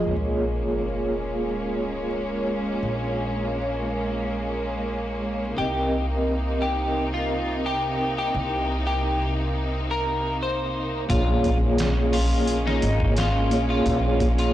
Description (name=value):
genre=trip hop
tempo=87 BPM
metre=4/4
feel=straight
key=Bb dorian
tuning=A4 = 441 Hz
part: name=vibraphone with soft mallets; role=accompaniment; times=0.0-14.5 s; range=Bb3 to Eb5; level=-27 LUFS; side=equal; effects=tremolo, low-pass filter, tape echo
part: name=rich studio string section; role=sustained chords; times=0.0-14.5 s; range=C3 to Eb4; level=-29 LUFS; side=equal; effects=vintage 12-bit sampler grit
part: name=upright bass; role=bass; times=0.0-14.5 s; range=Ab1 to C2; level=-28 LUFS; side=equal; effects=tube saturation
part: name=sub drop and impact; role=sound effects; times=0.1-2.8, 11.1-13.9 s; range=none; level=-32 LUFS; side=equal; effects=none
part: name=electric guitar at the edge of break-up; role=melody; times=5.6-14.5 s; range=Eb4 to C5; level=-28 LUFS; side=left 1 dB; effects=analog chorus, dub echo
part: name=trip hop sampler-style drum kit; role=drums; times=11.1-14.5 s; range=hi-hat, kick drum, snare drum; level=-28 LUFS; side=equal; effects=studio reverb
room=light reverb, small room reverb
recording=blown-out, overdriven recording, vinyl crackle, overdrive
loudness=-22 LUFS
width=side -13 dB against mid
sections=0.1-11.1 A section; 11.1-14.5 B section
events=impact 0.1-2.8, 11.1-13.9; filter sweep on vibraphone 0.1-11.1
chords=0.1 Bbm7; 5.6 Cm7; 11.1 Bbm7